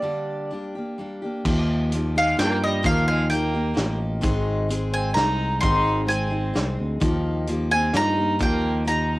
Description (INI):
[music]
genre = acoustic folk duo or small band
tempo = 129 BPM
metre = 3/4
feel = straight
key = Eb major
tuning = A4 = 440 Hz
[part]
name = mandolin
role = melody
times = 0.0-9.2 s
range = D5 to C6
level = -24 LUFS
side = equal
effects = cassette tape
[part]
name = picked steel-string acoustic guitar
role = accompaniment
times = 0.0-9.2 s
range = Ab2 to Ab4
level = -26 LUFS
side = left 1 dB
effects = none
[part]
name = fingered electric bass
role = bass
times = 1.5-9.2 s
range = Ab1 to G2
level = -25 LUFS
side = equal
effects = none
[part]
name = loose indie drum kit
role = drums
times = 1.5-9.0 s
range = crash cymbal, hi-hat, kick drum, snare drum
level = -27 LUFS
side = equal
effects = cassette tape
[part]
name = warm fiddle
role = second line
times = 2.2-9.2 s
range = G3 to Eb4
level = -29 LUFS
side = right 2 dB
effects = plate reverb
[sound]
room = moderate booth ambience, RT60 0.2 s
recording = home recording on cassette, faint mains hum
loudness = -20 LUFS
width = side -19 dB against mid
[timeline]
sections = 0.0-1.4 A section; 1.4-9.2 B section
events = none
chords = 0.0 Gm/D; 1.4 Ebadd9; 4.2 Ab; 7.0 Ebadd9